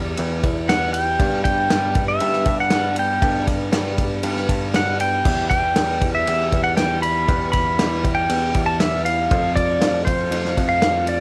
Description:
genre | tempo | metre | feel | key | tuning
folk rock and heartland rock | 118 BPM | 4/4 | straight | unclear | A4 = 440 Hz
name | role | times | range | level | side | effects
clear baby grand piano | accompaniment | 0.0-11.2 s | D4 to C5 | -40 LUFS | equal | none
picked steel-string acoustic guitar | accompaniment | 0.0-11.2 s | G2 to B4 | -35 LUFS | equal | none
electric guitar through a small old amp | riff | 0.0-11.2 s | E2 to G4 | -31 LUFS | equal | analog chorus, cassette tape
picked electric bass | bass | 0.0-11.2 s | E2 to G2 | -28 LUFS | equal | none
natural country drum kit | drums | 0.2-11.2 s | crash cymbal, kick drum, ride cymbal, snare drum | -24 LUFS | equal | none
pedal steel guitar | melody | 0.7-11.2 s | C5 to B5 | -23 LUFS | equal | cassette tape
room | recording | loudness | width
moderate booth ambience, RT60 0.2 s | home recording on cassette | -20 LUFS | mono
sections
0.0-11.2 A section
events
none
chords
0.0 Em; 1.2 G; 5.3 Em; 9.3 F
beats
0.18 0.69 | 1.19 1.70 2.21 2.72 | 3.22 3.73 4.24 4.75 | 5.25 5.76 6.27 6.78 | 7.28 7.79 8.30 8.80 | 9.31 9.82 10.32 10.83

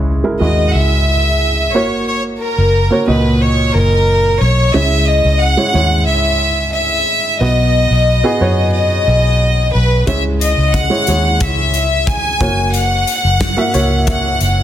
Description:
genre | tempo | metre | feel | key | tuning
piano-driven pop | 90 BPM | 4/4 | straight | C# dorian | A4 = 439 Hz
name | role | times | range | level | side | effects
warm upright piano | accompaniment | 0.0-14.6 s | A#2 to E5 | -18 LUFS | right 2 dB | none
vintage muted fingered electric bass | bass | 0.0-14.6 s | F#1 to F#2 | -15 LUFS | equal | none
impact | sound effects | 0.0-2.1 s | none | -34 LUFS | left 2 dB | none
clear chamber violin section | melody | 0.4-14.6 s | A#4 to G#5 | -15 LUFS | left 1 dB | none
modern studio drum kit | drums | 10.1-14.6 s | hi-hat, kick drum, snare drum | -20 LUFS | left 1 dB | none
room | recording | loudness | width
light reverb, small room ambience | dense, heavily limited modern master | -11 LUFS | side -11 dB against mid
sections
0.0-14.6 A section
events
impact 0.0-2.1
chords
0.0 C#m; 1.7 F#; 4.7 C#m; 7.4 B; 10.1 C#m; 12.4 F#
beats
0.07 0.74 1.41 | 2.07 2.74 3.41 4.07 | 4.74 5.41 6.07 6.74 | 7.41 8.07 8.74 9.41 | 10.07 10.74 11.41 12.07 | 12.74 13.41 14.07

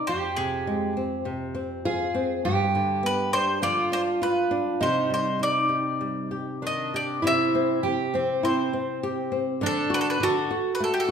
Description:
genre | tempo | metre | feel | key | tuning
fado-style ballad | 101 BPM | 4/4 | rubato | C harmonic minor, C major from 7.2 s | A4 = 440 Hz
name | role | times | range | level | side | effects
bowl-back mandolin | melody | 0.0-11.1 s | G4 to E5 | -26 LUFS | left 2 dB | none
fingerpicked twelve-string acoustic guitar | second line | 0.0-11.1 s | C4 to Ab4 | -27 LUFS | right 4 dB | none
flamenco guitar | accompaniment | 0.0-11.1 s | F2 to G4 | -28 LUFS | left 2 dB | none
room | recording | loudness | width
wet recital hall reverb, RT60 1.4 s | minimal, uncompressed stereo recording | -23 LUFS | side -7 dB against mid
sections
0.0-7.2 A section; 7.2-11.1 B section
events
none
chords
0.1 Fmadd9; 2.4 G7; 4.8 Cmadd9; 7.2 C; 9.6 D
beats
| 0.07 0.67 1.26 1.85 | 2.44 3.03 3.61 4.20 | 4.80 5.40 6.00 6.62 | 7.24 7.84 8.44 9.04 | 9.63 10.21 10.80

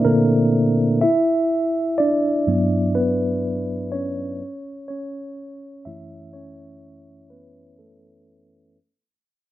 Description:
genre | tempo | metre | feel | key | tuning
R&B | 62 BPM | 4/4 | swing 54% on 16ths | unclear | A4 = 441 Hz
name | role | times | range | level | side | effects
mellow tine electric piano | solo | 0.0-8.8 s | F#2 to E5 | -19 LUFS | equal | medium stereo tremolo, low-pass filter
room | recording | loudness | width
moderate studio reverb, RT60 0.6 s | dark, warm production | -18 LUFS | side -14 dB against mid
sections
0.0-8.8 A section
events
fade-out 0.0-8.8; tine electric piano solo 0.0-8.8; filter sweep on tine electric piano 0.0-8.8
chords
0.0 Bbmaj9; 1.0 Gmaj7; 4.4 F#m7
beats
0.05 | 1.02 1.99 2.95 3.92 | 4.89 5.86 6.83 7.79

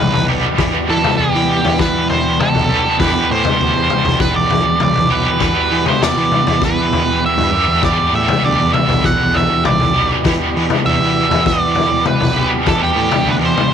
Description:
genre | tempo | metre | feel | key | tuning
psychedelic rock | 99 BPM | 4/4 | straight | E minor | A4 = 442 Hz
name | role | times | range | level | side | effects
octave-fuzz lead guitar | melody | 0.0-13.7 s | G4 to F#5 | -17 LUFS | right 3 dB | distortion, tape echo
cranked stack guitar | riff | 0.0-13.7 s | E2 to G4 | -17 LUFS | right 1 dB | overdrive, harmonic tremolo
fuzz picked electric bass | bass | 0.0-13.5 s | B1 to E3 | -21 LUFS | right 1 dB | overdrive
raw garage drum kit | drums | 0.1-13.7 s | kick drum, snare drum, toms | -18 LUFS | left 4 dB | none
room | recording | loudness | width
light reverb, studio ambience | 1960s-style stereo | -12 LUFS | side -8 dB against mid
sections
0.0-13.7 A section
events
none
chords
0.0 Em7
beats
| 0.59 1.19 1.80 2.40 | 3.01 3.61 4.21 4.82 | 5.42 6.02 6.63 7.23 | 7.83 8.44 9.04 9.65 | 10.25 10.86 11.46 12.06 | 12.67 13.27

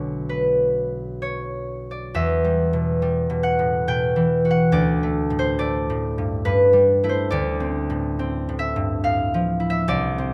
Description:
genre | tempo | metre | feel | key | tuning
classical, solo harp piece | 69 BPM | 3/4 | rubato | unclear | A4 = 440 Hz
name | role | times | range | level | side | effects
concert harp | solo | 0.0-10.3 s | B1 to G5 | -22 LUFS | equal | none
room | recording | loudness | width
little or no reverb | close, detailed microphones | -21 LUFS | mono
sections
0.0-2.1 A section; 2.1-10.3 B section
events
none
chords
0.0 Bm6; 2.1 Em9; 4.8 Dadd9; 6.5 G69; 7.3 Dm9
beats
0.30 1.22 | 2.13 3.01 3.88 | 4.75 5.62 6.47 | 7.33 8.20 9.06 | 9.91

